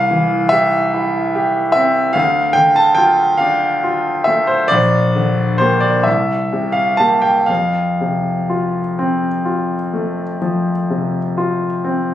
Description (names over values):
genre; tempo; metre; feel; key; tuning
classical, romantic nocturne for solo piano; 40-50 BPM (dotted quarters); 12/8; rubato; F major; A4 = 441 Hz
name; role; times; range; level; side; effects
warm concert grand piano; solo; 0.0-12.1 s; Bb1 to A5; -13 LUFS; equal; none
room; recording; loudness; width
light reverb; recorded on a phone in the room, studio ambience, compression; -13 LUFS; side -12 dB against mid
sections
0.0-12.1 A section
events
none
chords
0.0 C; 2.2 Dm; 4.7 Gm/Bb; 6.1 C7; 7.5 F